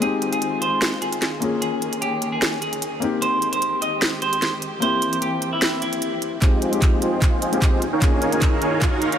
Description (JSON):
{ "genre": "future bass", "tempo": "150 BPM", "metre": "4/4", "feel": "swing 54% on 16ths, half-time", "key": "F minor", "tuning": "A4 = 440 Hz", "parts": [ { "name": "clean electric guitar", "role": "melody", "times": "0.0-6.3 s", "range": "E4 to Eb5", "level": "-24 LUFS", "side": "right 1 dB", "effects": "spring reverb, sidechain pumping, dub echo" }, { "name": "felt-muted upright piano", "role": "accompaniment", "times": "0.0-9.2 s", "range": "Ab3 to Ab4", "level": "-26 LUFS", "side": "left 4 dB", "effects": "sidechain pumping, dub echo" }, { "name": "dark studio string section", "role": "sustained chords", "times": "0.0-9.2 s", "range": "Eb3 to Ab4", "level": "-31 LUFS", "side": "equal", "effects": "sidechain pumping, low-pass filter" }, { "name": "trap drum kit", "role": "drums", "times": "0.0-9.2 s", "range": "handclaps, hi-hat, snare drum", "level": "-25 LUFS", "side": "right 1 dB", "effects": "studio reverb" }, { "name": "dense compressed supersaw", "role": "riff", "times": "6.4-9.2 s", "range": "Eb4 to C6", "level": "-23 LUFS", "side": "right 2 dB", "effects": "vintage 12-bit sampler grit, sidechain pumping, low-pass filter" }, { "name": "electronic kick drum", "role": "drums", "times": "6.4-8.9 s", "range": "none", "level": "-18 LUFS", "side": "equal", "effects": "studio reverb" }, { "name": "riser", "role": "sound effects", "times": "7.4-9.2 s", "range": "none", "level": "-30 LUFS", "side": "right 3 dB", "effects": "none" } ], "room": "light reverb", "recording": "none", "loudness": "-19 LUFS", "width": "side -9 dB against mid", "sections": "0.0-6.4 A section; 6.4-9.2 B section", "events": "build-up 6.4-9.2; drum fill 6.4-9.2; filter sweep on supersaw synth 6.4-9.2; riser 7.4-9.2", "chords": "0.0 Fm7; 1.4 Eb7sus4; 3.0 Abmaj7; 4.8 C7; 6.4 Fm7; 7.8 Eb7sus4", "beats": "| 0.02 0.42 0.82 1.22 | 1.62 2.02 2.42 2.82 | 3.22 3.62 4.02 4.42 | 4.82 5.22 5.62 6.02 | 6.42 6.82 7.22 7.62 | 8.02 8.42 8.82" }